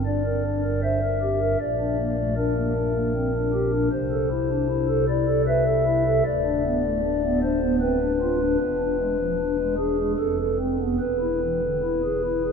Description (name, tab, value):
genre	classical, chorale-style piece for pipe organ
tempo	77 BPM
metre	3/4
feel	rubato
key	A minor from 3.9 s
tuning	A4 = 440 Hz
part	pipe organ, stopped flute	solo	0.0-12.5 s	D1 to E5	-21 LUFS	left 1 dB	none
room	wet cathedral reverb, RT60 6.6 s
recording	none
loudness	-21 LUFS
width	side -6 dB against mid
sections	0.0-12.5 A section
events	none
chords	0.0 Gm; 1.6 Gm/Bb (rootless); 3.9 Am/C; 6.3 Bm/D; 8.6 E7; 10.2 F; 11.0 E